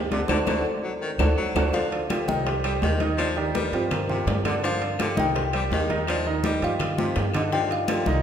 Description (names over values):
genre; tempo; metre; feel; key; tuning
latin, salsa; 166 BPM; 4/4; straight; unclear; A4 = 442 Hz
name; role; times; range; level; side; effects
kalimba; melody; 0.0-8.0 s; C4 to Bb5; -28 LUFS; left 1 dB; none
clear upright piano; accompaniment; 0.0-8.2 s; D3 to Eb5; -28 LUFS; right 3 dB; none
upright bass; bass; 0.0-8.2 s; C2 to G2; -28 LUFS; equal; none
breathy baritone saxophone; second line; 0.1-8.2 s; C3 to G3; -30 LUFS; left 3 dB; none
bongos; percussion; 0.1-8.1 s; none; -36 LUFS; left 4 dB; none
congas; percussion; 0.1-8.2 s; none; -31 LUFS; left 2 dB; none
timbales; percussion; 0.1-8.1 s; none; -34 LUFS; right 5 dB; none
claves; percussion; 0.3-8.1 s; none; -38 LUFS; left 5 dB; none
room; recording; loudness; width
wet recital hall reverb, RT60 1.7 s; recorded in a church or concert hall; -22 LUFS; side -8 dB against mid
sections
0.0-1.7 A section; 1.7-8.2 B section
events
band accent 0.3-1.7; drum fill 0.7-1.7, 7.0-7.5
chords
0.3 D7; 1.7 G5; 2.5 Cm; 3.2 Ebmaj7; 3.9 Gm7; 5.4 Cm; 6.1 Ebmaj7; 6.8 G5